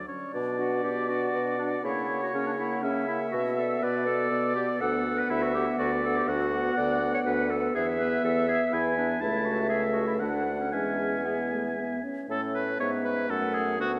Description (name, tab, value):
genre	quick classical-period movement for wind quintet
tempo	121 BPM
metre	3/4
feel	rubato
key	B minor, A major from 6.3 s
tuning	A4 = 440 Hz
part	concert flute	melody	0.0-14.0 s	C#5 to F#5	-38 LUFS	equal	none
part	warm oboe	second line	0.0-13.9 s	F#4 to A5	-34 LUFS	equal	none
part	clear clarinet	accompaniment	0.0-14.0 s	A3 to D5	-35 LUFS	equal	none
part	warm French horn	accompaniment	0.0-14.0 s	G#3 to D4	-36 LUFS	equal	none
part	mellow bassoon	bass	0.0-14.0 s	C#2 to C#3	-33 LUFS	equal	none
room	wet concert hall reverb, RT60 2.5 s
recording	none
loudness	-28 LUFS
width	mono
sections	0.3-12.3 A section; 12.3-14.0 B section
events	none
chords	0.3 Bm; 1.8 F#7/C#; 3.3 Bm; 4.8 Bm/D; 7.8 E; 9.2 A/C#; 10.2 D; 10.7 E; 12.3 A; 13.3 F#m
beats	| 0.34 0.85 1.35 | 1.84 2.34 2.84 | 3.33 3.83 4.32 | 4.81 5.30 5.79 | 6.28 6.77 7.26 | 7.75 8.24 8.73 | 9.22 9.71 10.21 | 10.73 11.26 11.78 | 12.29 12.80 13.30 | 13.79